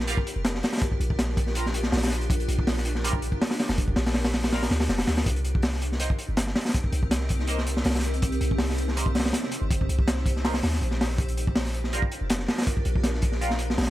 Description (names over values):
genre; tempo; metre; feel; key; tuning
drum and bass, jungle; 162 BPM; 4/4; swing 53% on 16ths; C minor; A4 = 443 Hz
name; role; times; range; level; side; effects
granular cloud pad; sustained chords; 0.0-13.9 s; C4 to C5; -34 LUFS; equal; built-in reverb, vintage 12-bit sampler grit
warm 808-style bass; bass; 0.0-13.9 s; F1 to Eb2; -28 LUFS; equal; none
crunchy breakbeat drum kit; drums; 0.0-13.9 s; hi-hat, kick drum, snare drum; -25 LUFS; equal; none
band-passed chord stab; stabs; 0.1-13.5 s; G3 to C5; -35 LUFS; right 2 dB; phaser, lush chorus, dub echo
room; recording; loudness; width
small room ambience; none; -23 LUFS; side -15 dB against mid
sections
0.0-13.9 A section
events
none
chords
0.0 Gm7; 5.3 Cm7; 11.2 Gm7